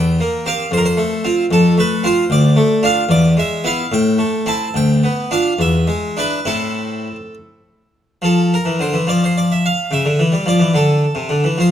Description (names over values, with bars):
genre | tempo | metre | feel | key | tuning
classical, baroque-style suite movement for harpsichord | 66-76 BPM (dotted quarters) | 6/8 | rubato | A minor, D minor from 8.2 s | A4 = 440 Hz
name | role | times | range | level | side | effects
harpsichord | solo | 0.0-11.7 s | D2 to A5 | -14 LUFS | equal | none
room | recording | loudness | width
moderate recital hall reverb, RT60 1.4 s | close, detailed microphones | -14 LUFS | side -10 dB against mid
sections
0.0-8.2 A section; 8.2-11.7 A section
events
none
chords
0.0 C7/E; 0.7 F; 2.3 Dm; 3.1 E; 3.9 Am; 4.8 Bdim/D; 5.6 E7; 6.5 Am; 8.2 Dm; 9.9 C#dim; 10.7 D5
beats
0.72 | 1.52 2.31 | 3.10 3.92 | 4.76 5.59 | 6.46 7.34 | 8.23 9.08 | 9.92 10.75 | 11.59